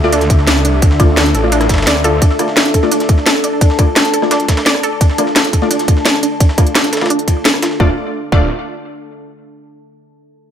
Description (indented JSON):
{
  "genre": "dark technical drum and bass",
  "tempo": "172 BPM",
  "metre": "4/4",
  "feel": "straight",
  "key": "D minor",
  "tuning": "A4 = 440 Hz",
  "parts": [
    { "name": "deep dark ambient pad", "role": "sustained chords", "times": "0.0-8.0 s", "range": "D4 to A5", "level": "-19 LUFS", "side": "left 2 dB", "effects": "chorus, built-in reverb, sidechain pumping" },
    { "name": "analog pluck", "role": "arpeggios", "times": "0.0-8.5 s", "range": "D4 to D5", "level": "-20 LUFS", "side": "right 3 dB", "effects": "chorus, cassette tape, sidechain pumping, tape echo" },
    { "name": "orchestra-hit-like synth stab", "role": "stabs", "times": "0.0-8.5 s", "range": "A3 to D5", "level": "-20 LUFS", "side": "left 2 dB", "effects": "built-in reverb, tape echo" },
    { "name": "snarling distorted saw bass", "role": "bass", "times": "0.0-2.2, 7.8-8.5 s", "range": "D1 to D2", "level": "-16 LUFS", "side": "equal", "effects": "distortion, overdrive, sidechain pumping" },
    { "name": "breakbeat sampler-style drum kit", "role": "drums", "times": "0.0-7.8 s", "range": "ride cymbal, snare drum", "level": "-24 LUFS", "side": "right 1 dB", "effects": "high-pass filter on snare, high-pass filter on cymbals" },
    { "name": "drum and bass drum kit", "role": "drums", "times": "0.1-7.7 s", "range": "hi-hat, rim click, snare drum", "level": "-14 LUFS", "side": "equal", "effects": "none" },
    { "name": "electronic kick drum", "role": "drums", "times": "0.3-8.4 s", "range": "none", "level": "-11 LUFS", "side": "equal", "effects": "none" }
  ],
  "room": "light reverb, digital ambience",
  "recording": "none",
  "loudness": "-10 LUFS",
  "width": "side -9 dB against mid",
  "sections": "0.0-7.8 A section; 7.8-9.2 B section",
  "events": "filter sweep on synth arpeggio sound 0.0-7.8; filter sweep on synth stab 0.0-7.8",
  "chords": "0.0 Dm",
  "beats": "0.12 0.47 | 0.82 1.17 1.52 1.87 | 2.22 2.57 2.92 3.26 | 3.61 3.96 4.31 4.66 | 5.01 5.36 5.71 6.05 | 6.40 6.75 7.10 7.45 | 7.80 8.15"
}